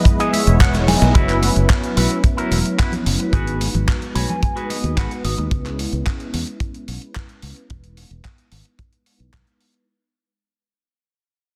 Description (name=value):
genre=nu-disco, nu disco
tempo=110 BPM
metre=4/4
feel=straight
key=unclear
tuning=A4 = 438 Hz
part: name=warm analog pad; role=accompaniment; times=0.0-9.9 s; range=F#3 to D#5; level=-26 LUFS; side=equal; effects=chorus, sidechain pumping, tape echo
part: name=dusty soul sampler-style drum kit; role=drums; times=0.1-9.9 s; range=handclaps, hi-hat, snare drum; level=-28 LUFS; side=equal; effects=overdrive
part: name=kick drum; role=drums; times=0.1-9.4 s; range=none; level=-19 LUFS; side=equal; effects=none
part: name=egg shaker and congas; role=percussion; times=0.1-5.5 s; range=none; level=-30 LUFS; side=equal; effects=none
part: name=electric guitar with an envelope filter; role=riff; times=0.2-5.5 s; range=E4 to B5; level=-27 LUFS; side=equal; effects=subtle chorus, tape echo
part: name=fingered electric bass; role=bass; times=0.5-9.4 s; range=E1 to E2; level=-22 LUFS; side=equal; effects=none
room=light reverb, small room ambience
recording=dense, heavily limited modern master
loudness=-19 LUFS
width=mono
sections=0.0-1.2 A section; 1.2-9.9 B section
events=clean electric guitar fill 0.1-1.2, 3.9-5.5; drum fill 0.7-1.2; fade-out 1.2-9.9; filter sweep on analog synth pad 1.2-9.9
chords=0.0 Emaj7; 1.2 F#7sus4; 3.3 G#m7; 5.5 C#m7; 7.7 Emaj7